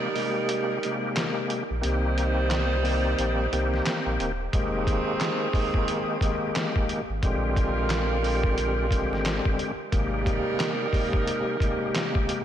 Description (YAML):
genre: hip hop, boom-bap hip-hop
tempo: 89 BPM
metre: 4/4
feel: swing 60% on 16ths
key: F dorian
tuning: A4 = 440 Hz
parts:
  - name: bright tonewheel organ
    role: accompaniment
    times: 0.0-12.4 s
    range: C3 to G4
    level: -28 LUFS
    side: left 2 dB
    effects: chorus vibrato, fast rotary speaker, cassette tape, high-pass filter, low-pass filter
  - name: dark saxophone section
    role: stabs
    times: 0.0-12.2 s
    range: Eb3 to C5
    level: -30 LUFS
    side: right 3 dB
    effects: high-pass filter, low-pass filter, ping-pong delay
  - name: trip hop sampler-style drum kit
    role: drums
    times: 0.2-12.4 s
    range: handclaps, hi-hat, kick drum, snare drum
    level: -28 LUFS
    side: equal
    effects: none
  - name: saturated sub bass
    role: bass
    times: 1.7-10.4 s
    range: Eb1 to C2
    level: -28 LUFS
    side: equal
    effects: none
room: moderate lush hall reverb, RT60 1.7 s, digital ambience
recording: dreamy mix soaked in reverb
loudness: -23 LUFS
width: side -10 dB against mid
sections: 0.0-12.4 A section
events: break 0.0-4.5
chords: 0.0 Abmaj9; 1.8 Cm7; 4.5 Fm11; 7.2 Bb13; 9.9 Abmaj9